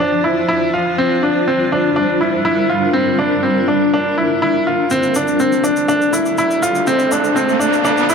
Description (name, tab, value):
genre	piano and strings electronica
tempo	122 BPM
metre	4/4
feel	straight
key	D minor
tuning	A4 = 440 Hz
part	granular cloud pad	sustained chords	0.0-8.1 s	F3 to F5	-18 LUFS	left 1 dB	built-in reverb
part	bright baby grand piano	riff	0.0-8.1 s	C4 to F4	-15 LUFS	equal	tape echo
part	warm sub bass	bass	4.9-8.1 s	D2	-38 LUFS	right 1 dB	none
part	shaker	drums	4.9-8.1 s	none	-28 LUFS	left 2 dB	high-pass filter on perc, high-pass filter on room
part	riser	sound effects	5.9-8.1 s	none	-22 LUFS	right 2 dB	none
room	moderate huge ambient reverb, RT60 4.0 s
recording	none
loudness	-13 LUFS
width	side -6 dB against mid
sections	0.0-4.9 A section; 4.9-8.1 B section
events	build-up 4.9-8.1; filter sweep on ambient pad 4.9-8.1; riser 5.9-8.1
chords	0.0 Dm7/F; 1.0 Gm7; 4.9 Dm7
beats	0.48 | 0.97 1.47 1.96 2.45 | 2.94 3.43 3.92 4.42 | 4.91 5.40 5.89 6.38 | 6.88 7.37 7.86